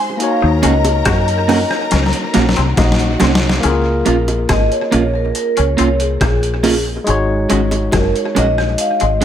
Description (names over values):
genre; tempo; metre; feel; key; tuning
lovers rock reggae; 70 BPM; 4/4; straight; Db major; A4 = 440 Hz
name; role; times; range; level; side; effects
warm studio string section; second line; 0.0-3.6 s; Gb4 to C6; -23 LUFS; left 2 dB; tape echo
barky tine electric piano; accompaniment; 0.0-9.2 s; Ab3 to Eb5; -21 LUFS; left 2 dB; medium stereo tremolo
vibraphone with soft mallets; melody; 0.2-9.2 s; Ab4 to F5; -19 LUFS; right 1 dB; tape echo
boom bap sampler-style drum kit; drums; 0.2-9.2 s; hi-hat, kick drum, rim click, snare drum; -19 LUFS; equal; overdrive, gated reverb, tape echo
twangy electric guitar; riff; 0.4-9.1 s; Gb3 to Gb4; -24 LUFS; left 9 dB; wide subtle chorus
deep dub fingered electric bass; bass; 0.4-9.2 s; Gb1 to Gb2; -17 LUFS; equal; none
electric guitar through a small old amp; stabs; 0.6-9.2 s; Ab3 to Gb4; -19 LUFS; right 6 dB; none
bongos; percussion; 0.6-8.6 s; none; -25 LUFS; right 1 dB; none
room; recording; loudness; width
light reverb; none; -12 LUFS; side -10 dB against mid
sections
0.0-3.6 A section; 3.6-9.2 B section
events
drum fill 1.9-3.6; vibraphone solo 3.6-9.2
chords
0.2 Ebm7; 3.6 Db6; 7.1 Ab7sus4